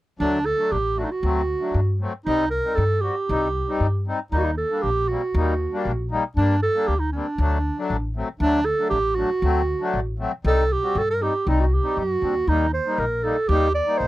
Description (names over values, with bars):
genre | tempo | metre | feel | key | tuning
klezmer | 117 BPM | 2/4 | straight | D phrygian dominant | A4 = 440 Hz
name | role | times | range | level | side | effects
warm clarinet | melody | 0.2-14.1 s | D4 to D5 | -23 LUFS | right 2 dB | none
accordion | accompaniment | 0.2-14.1 s | F#3 to F#4 | -26 LUFS | left 3 dB | none
upright bass | bass | 0.2-14.1 s | A1 to G2 | -24 LUFS | left 1 dB | none
room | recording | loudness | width
light reverb | dry, close 1970s-style studio recording | -20 LUFS | side -16 dB against mid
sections
0.2-8.4 A section; 8.4-14.1 A section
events
none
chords
0.2 D; 2.3 Cm; 4.3 Eb; 6.4 Gm; 7.4 D; 10.4 Cm; 12.5 Eb